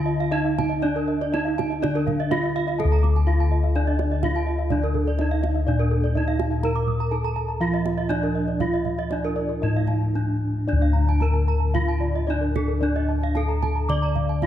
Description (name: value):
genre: Balinese gamelan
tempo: 112-125 BPM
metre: 4/4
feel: straight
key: D pelog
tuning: A4 = 439 Hz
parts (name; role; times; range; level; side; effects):
- gamelan-type bronze metallophone; melody; 0.0-14.5 s; D4 to D5; -27 LUFS; right 2 dB; none
- gamelan-type bronze metallophone; arpeggios; 0.0-14.4 s; A4-30c to D6; -32 LUFS; right 7 dB; tape echo
- gamelan-type bossed gongs; bass; 0.0-14.5 s; D2 to Bb4-20c; -22 LUFS; left 1 dB; none
- gamelan-type bronze metallophone; arpeggios; 0.1-14.5 s; A4-30c to Eb6+20c; -31 LUFS; left 3 dB; none
- kendang; percussion; 0.6-14.5 s; none; -32 LUFS; right 7 dB; none
room: light reverb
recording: dark, warm production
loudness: -20 LUFS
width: side -11 dB against mid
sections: 0.0-2.8 A section; 2.8-10.7 B section; 10.7-14.5 A section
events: none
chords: none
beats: 0.33 | 0.84 1.34 1.84 2.32 | 2.81 3.28 3.76 4.24 | 4.72 5.20 5.68 6.15 | 6.63 7.11 7.60 8.10 | 8.60 9.11 9.62 10.15 | 10.68 11.22 11.75 12.29 | 12.82 13.36 13.89 14.43